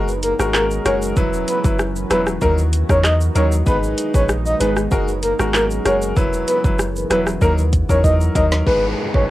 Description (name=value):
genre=dancehall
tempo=96 BPM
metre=4/4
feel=straight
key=G# minor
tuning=A4 = 440 Hz
part: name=clear grand piano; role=accompaniment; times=0.0-9.3 s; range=F#3 to B4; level=-22 LUFS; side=left 1 dB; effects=sidechain pumping
part: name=deep dark ambient pad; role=sustained chords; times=0.0-8.7 s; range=D#3 to B4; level=-28 LUFS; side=right 1 dB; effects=chorus, built-in reverb, sidechain pumping
part: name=punchy sub bass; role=bass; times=0.0-9.3 s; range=E1 to E2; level=-20 LUFS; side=equal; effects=none
part: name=afro-pop drum kit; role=drums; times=0.1-9.3 s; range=handclaps, hi-hat, kick drum, rim click, shaker, snare drum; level=-20 LUFS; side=equal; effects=none
part: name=breathy flute-like synth lead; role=melody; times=0.2-9.2 s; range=A#4 to D#5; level=-21 LUFS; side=equal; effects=chorus, cassette tape, tape echo
part: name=downlifter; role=sound effects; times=8.7-9.3 s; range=none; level=-25 LUFS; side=right 1 dB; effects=none
room=light reverb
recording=home recording on cassette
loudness=-15 LUFS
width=side -15 dB against mid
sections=0.0-8.7 A section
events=drum fill 7.4-8.7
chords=0.0 F#add9; 1.2 Esus2; 2.4 D#m; 3.7 G#m; 4.9 F#add9; 6.2 Esus2; 7.4 D#m; 8.7 G#m